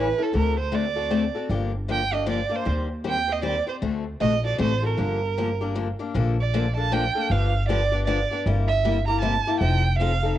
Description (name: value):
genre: acoustic string swing (jazz manouche)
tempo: 155 BPM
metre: 3/4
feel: swing 61% on 8ths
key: G minor, Bb major from 6.1 s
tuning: A4 = 436 Hz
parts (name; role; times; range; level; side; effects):
- rich violin; melody; 0.0-10.3 s; A4 to Bb5; -26 LUFS; right 6 dB; cassette tape
- picked steel-string acoustic guitar; accompaniment; 0.0-10.4 s; C3 to C5; -27 LUFS; left 6 dB; none
- upright bass; bass; 0.0-10.4 s; F1 to Eb2; -25 LUFS; equal; none
room: light reverb, small room ambience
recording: home recording on cassette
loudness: -21 LUFS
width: side -12 dB against mid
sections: 0.0-6.1 A section; 6.1-10.4 B section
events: none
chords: 0.3 D7; 1.5 Gm7; 2.7 Eb6; 3.8 D7; 5.0 Gm7; 6.1 Bbmaj7; 7.3 G7; 8.5 C7/G; 9.6 F7